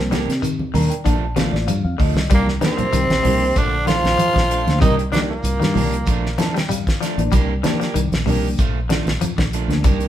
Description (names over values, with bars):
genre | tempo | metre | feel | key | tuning
afrobeat | 96 BPM | 4/4 | straight | C dorian | A4 = 441 Hz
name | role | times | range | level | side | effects
reed electric piano | accompaniment | 0.0-9.8 s | F3 to Bb5 | -27 LUFS | left 3 dB | medium tremolo
fingered electric bass | bass | 0.0-10.1 s | A1 to C3 | -21 LUFS | equal | none
electric guitar at the edge of break-up | arpeggios | 0.1-10.0 s | C3 to G3 | -26 LUFS | left 7 dB | none
electric guitar at the edge of break-up | stabs | 0.1-10.0 s | Eb3 to G4 | -27 LUFS | right 7 dB | none
damped 70s drum kit | drums | 0.1-10.1 s | hi-hat, kick drum, snare drum | -21 LUFS | equal | none
congas | percussion | 0.1-10.0 s | none | -25 LUFS | right 1 dB | none
shekere | percussion | 0.1-10.0 s | none | -31 LUFS | right 3 dB | none
raspy tenor saxophone | melody | 2.3-6.5 s | Bb3 to F4 | -21 LUFS | equal | none
trombone with bucket mute | second line | 2.4-6.5 s | Bb2 to F3 | -26 LUFS | right 2 dB | none
room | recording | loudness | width
moderate studio reverb, RT60 0.7 s | band playing live in one room | -16 LUFS | side -11 dB against mid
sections
0.0-2.3 A section; 2.3-10.1 B section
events
reed electric piano fill 0.4-2.3, 6.1-7.3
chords
0.0 Cm9; 1.0 Bbmaj7; 2.3 Cm9; 3.6 Bbmaj7; 4.8 Cm9; 6.1 Bbmaj7; 7.3 Cm9; 8.6 Bbmaj7